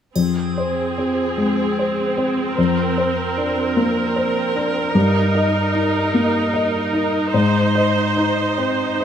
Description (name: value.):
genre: cinematic, emotional film score for orchestra.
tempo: 50 BPM (dotted quarters).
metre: 6/8.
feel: rubato.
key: F dorian.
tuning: A4 = 440 Hz.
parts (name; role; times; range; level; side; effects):
clear studio viola section; accompaniment; 0.2-9.0 s; C4 to C5; -20 LUFS; right 4 dB; none.
warm baby grand piano; accompaniment; 0.2-9.0 s; F2 to Eb5; -19 LUFS; left 2 dB; none.
triangle; percussion; 0.2-1.7 s; none; -36 LUFS; right 2 dB; none.
room: moderate scoring stage reverb, RT60 2.0 s.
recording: close, detailed microphones.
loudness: -16 LUFS.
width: side -8 dB against mid.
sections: 0.2-9.0 A section.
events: none.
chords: 0.2 Fm; 2.6 Bbadd9/F; 4.9 Eb/G; 7.3 Ab.